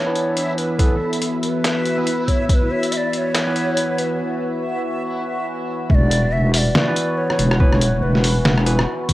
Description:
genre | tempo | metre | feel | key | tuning
deep dubstep | 141 BPM | 4/4 | swing 58% on 16ths, half-time | unclear | A4 = 440 Hz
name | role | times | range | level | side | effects
breathy mellow ney | melody | 0.0-9.1 s | A4 to E5 | -24 LUFS | equal | low-pass filter, cassette tape, dub echo
overtone-sweeping drone | sustained chords | 0.7-9.1 s | E3 to F#4 | -25 LUFS | left 1 dB | chorus, built-in reverb, cassette tape
barky tine electric piano | stabs | 0.0-4.2, 6.8-8.8 s | E3 to B4 | -26 LUFS | right 1 dB | low-pass filter, cassette tape, dub echo
backwards swelling texture | texture | 0.0-4.2 s | E4 to E5 | -29 LUFS | equal | built-in reverb, cassette tape
trip hop sampler-style drum kit | drums | 0.2-9.1 s | hi-hat, rim click, snare drum | -22 LUFS | equal | high-pass filter on snare, high-pass filter on hats, high-pass filter on room
electronic kick drum | drums | 0.8-2.6, 5.9-9.1 s | none | -16 LUFS | equal | none
wobble bass | bass | 5.9-9.1 s | E1 to G1 | -17 LUFS | equal | chorus
room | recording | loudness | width
moderate spring reverb, RT60 1.7 s, digital ambience | home recording on cassette | -16 LUFS | side -16 dB against mid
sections
0.0-5.9 A section; 5.9-9.1 B section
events
build-up 0.0-5.9; filter sweep on tine electric piano 0.0-5.9; filter sweep on synth drone 0.0-5.9; break 4.2-5.9; drop 5.9-9.1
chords
0.0 E5

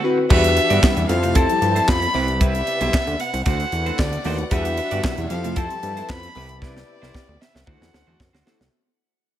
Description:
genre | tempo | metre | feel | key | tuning
early-eighties boogie funk | 114 BPM | 4/4 | straight | unclear | A4 = 440 Hz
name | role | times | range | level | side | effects
dark violin | melody | 0.0-8.4 s | D5 to B5 | -23 LUFS | left 1 dB | none
chorused polysynth | accompaniment | 0.0-8.6 s | C4 to D5 | -26 LUFS | left 2 dB | none
clear studio string section | sustained chords | 0.0-8.7 s | C3 to F#5 | -34 LUFS | equal | none
clean electric guitar | riff | 0.0-8.6 s | G3 to D5 | -30 LUFS | right 6 dB | wide subtle chorus
fat analog bass | bass | 0.3-8.7 s | B1 to G2 | -24 LUFS | equal | none
tight funk drum kit | drums | 0.3-8.7 s | crash cymbal, handclaps, hi-hat, kick drum, snare drum | -21 LUFS | equal | gated reverb
mellow synth brass | second line | 0.7-1.7, 4.9-5.9 s | B2 to A4 | -28 LUFS | right 1 dB | chorus
room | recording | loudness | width
small room ambience | none | -17 LUFS | side -11 dB against mid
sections
0.3-8.7 A section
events
break 0.0-0.3; fade-out 0.3-8.7; drum fill 6.6-8.7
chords
0.3 Em9; 1.1 Fmaj7; 2.1 Cmaj7; 3.5 D7; 4.5 Em9; 5.3 Fmaj7; 6.4 Cmaj7; 7.7 D7

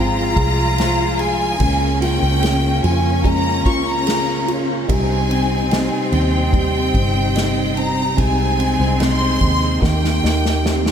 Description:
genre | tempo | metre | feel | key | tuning
pop ballad | 73 BPM | 4/4 | straight | unclear | A4 = 438 Hz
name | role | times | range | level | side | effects
bright studio violin section | melody | 0.0-10.9 s | G5 to Db6 | -22 LUFS | left 1 dB | none
rich symphonic cello section | second line | 0.0-10.9 s | Bb3 to F4 | -24 LUFS | left 2 dB | none
dark baby grand piano | accompaniment | 0.0-10.9 s | C3 to C5 | -24 LUFS | right 4 dB | none
tonewheel organ | sustained chords | 0.0-10.9 s | C3 to Ab4 | -24 LUFS | equal | overdrive, chorus vibrato, fast rotary speaker
vintage muted fingered electric bass | bass | 0.0-10.9 s | G1 to F2 | -20 LUFS | equal | none
unplugged drum kit | drums | 0.4-10.9 s | kick drum, ride cymbal, snare drum | -23 LUFS | equal | none
room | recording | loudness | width
moderate huge ambient reverb, RT60 4.8 s | dreamy mix soaked in reverb | -15 LUFS | side -8 dB against mid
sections
0.0-10.9 A section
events
drum fill 9.8-10.9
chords
0.0 Fm; 1.6 Db6; 4.9 Cm; 8.2 Ab/C; 9.8 Eb

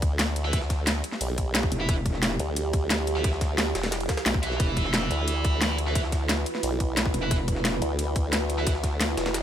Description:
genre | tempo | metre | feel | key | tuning
dark technical drum and bass | 177 BPM | 4/4 | straight | E minor | A4 = 440 Hz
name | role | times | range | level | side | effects
deep dark ambient pad | sustained chords | 1.0-9.4 s | E4 to B4 | -33 LUFS | right 2 dB | chorus, built-in reverb, sidechain pumping
formant-sweep wobble bass | bass | 0.0-9.4 s | E1 to D2 | -28 LUFS | equal | chorus
drum and bass drum kit | drums | 0.0-9.4 s | hi-hat, snare drum | -28 LUFS | left 1 dB | overdrive, studio reverb
electronic kick drum | drums | 0.0-8.9 s | none | -26 LUFS | equal | overdrive, studio reverb
jungle sampler-style drum kit | drums | 0.0-9.4 s | hi-hat, ride cymbal, snare drum | -35 LUFS | equal | high-pass filter on cymbals, studio reverb, high-pass filter on snare, high-pass filter on hats, high-pass filter on room
high-gain distorted guitar | stabs | 0.4-8.7 s | E4 to E5 | -33 LUFS | right 2 dB | distortion, dub echo
metallic wobble bass | bass | 1.7-2.4, 4.6-5.1, 7.1-7.8 s | E1 | -28 LUFS | equal | distortion, chorus, overdrive, sidechain pumping
swell | sound effects | 9.3-9.4 s | none | barely audible | none | none
room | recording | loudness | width
digital ambience | none | -23 LUFS | side -10 dB against mid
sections
0.0-9.4 A section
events
none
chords
0.0 Emadd9

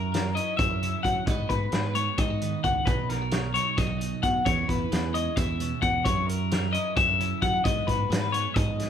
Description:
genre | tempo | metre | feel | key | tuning
math rock and midwest emo | 263 BPM (eighths) | 7/8 | straight | unclear | A4 = 440 Hz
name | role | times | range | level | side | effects
twelve-string electric guitar | accompaniment | 0.0-8.9 s | G#2 to C#5 | -33 LUFS | right 8 dB | spring reverb
twelve-string electric guitar | arpeggios | 0.0-8.9 s | A#4 to F#5 | -27 LUFS | left 5 dB | none
modern bright fingered electric bass | bass | 0.0-8.9 s | B1 to F#3 | -31 LUFS | right 1 dB | none
loose indie drum kit | drums | 0.1-8.9 s | hi-hat, kick drum, snare drum | -29 LUFS | equal | none
room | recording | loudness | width
moderate large studio reverb, RT60 1.0 s | band playing live in one room | -23 LUFS | side -8 dB against mid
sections
0.0-8.9 A section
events
none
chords
0.0 F#7; 1.3 G#m7; 2.9 Bmaj7; 4.5 E6; 6.1 F#7; 7.7 G#m7

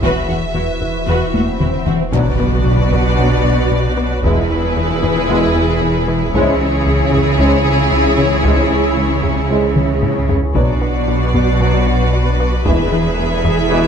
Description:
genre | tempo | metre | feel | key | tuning
cinematic, hybrid orchestral and electronic film score | 114 BPM | 4/4 | straight | B dorian | A4 = 440 Hz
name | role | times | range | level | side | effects
rich symphonic violin section | melody | 0.0-13.9 s | B4 to E5 | -24 LUFS | left 4 dB | none
warm symphonic violin section | second line | 0.0-13.9 s | E4 to B4 | -24 LUFS | left 3 dB | none
clear symphonic viola section | accompaniment | 0.0-13.9 s | E4 to G#4 | -23 LUFS | equal | none
clear trombone section | sustained chords | 0.0-13.9 s | G#2 to G#3 | -23 LUFS | right 6 dB | none
mellow French horn section | sustained chords | 0.0-13.9 s | G#3 to F#4 | -24 LUFS | left 5 dB | none
phased analog pad | sustained chords | 0.0-13.9 s | E3 to C#5 | -22 LUFS | equal | phaser, chorus
plucky analog bass | riff | 0.0-13.9 s | C#2 to B3 | -21 LUFS | left 3 dB | none
clear studio cello section | bass | 0.0-13.9 s | E2 to C#3 | -22 LUFS | right 4 dB | none
pure sine sub bass | bass | 0.0-13.9 s | E1 to C#2 | -22 LUFS | equal | none
rich symphonic double bass section | bass | 0.0-13.9 s | E1 to C#2 | -22 LUFS | right 4 dB | none
taiko ensemble | drums | 0.0-13.7 s | none | -20 LUFS | equal | none
swell and impact | sound effects | 1.0-4.2 s | none | -25 LUFS | equal | none
room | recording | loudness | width
moderate recital hall reverb, RT60 1.5 s | dark, warm production | -12 LUFS | side -7 dB against mid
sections
0.0-2.1 A section; 2.1-13.9 A section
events
swell 1.0-2.1; drum fill 1.3-2.1, 9.8-10.6; impact 2.1-4.2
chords
0.0 Esus2; 2.1 Bm; 4.2 E; 6.3 C#m; 10.6 Bm; 12.7 E

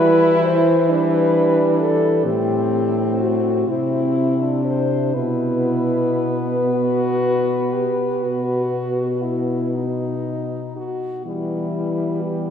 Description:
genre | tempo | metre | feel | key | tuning
classical, lyrical piece for horn quartet | 38-46 BPM (dotted quarters) | 12/8 | rubato | E minor | A4 = 441 Hz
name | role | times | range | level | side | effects
mellow French horn | melody | 0.0-12.5 s | E4 to C5 | -21 LUFS | left 4 dB | none
mellow French horn | second line | 0.0-12.5 s | B3 to E4 | -25 LUFS | right 5 dB | none
warm French horn | accompaniment | 0.0-12.5 s | G3 to G4 | -25 LUFS | left 2 dB | none
dark French horn | bass | 0.0-12.5 s | A2 to E3 | -22 LUFS | right 1 dB | none
room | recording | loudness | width
wet cathedral reverb, RT60 4.5 s | heard from further back in the room | -17 LUFS | side -8 dB against mid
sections
0.0-11.3 A section; 11.3-12.5 B section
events
none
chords
0.0 Em; 2.3 Am; 5.2 Em/B; 8.2 B; 11.3 Em

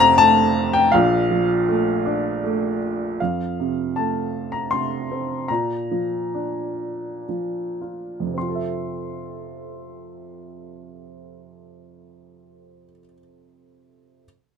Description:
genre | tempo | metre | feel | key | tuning
classical, lyrical solo piano | 51-83 BPM | 3/4 | rubato | F major | A4 = 441 Hz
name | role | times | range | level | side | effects
warm upright piano | solo | 0.0-14.3 s | F1 to C6 | -19 LUFS | left 1 dB | none
room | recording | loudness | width
little or no reverb | close, detailed microphones | -20 LUFS | side -7 dB against mid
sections
0.0-3.2 A section; 3.2-8.4 B section; 8.4-11.7 C section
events
slowing down 3.2-8.4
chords
0.0 F; 0.9 Bbmaj7; 3.2 F; 5.5 Bb; 8.4 Fmaj7

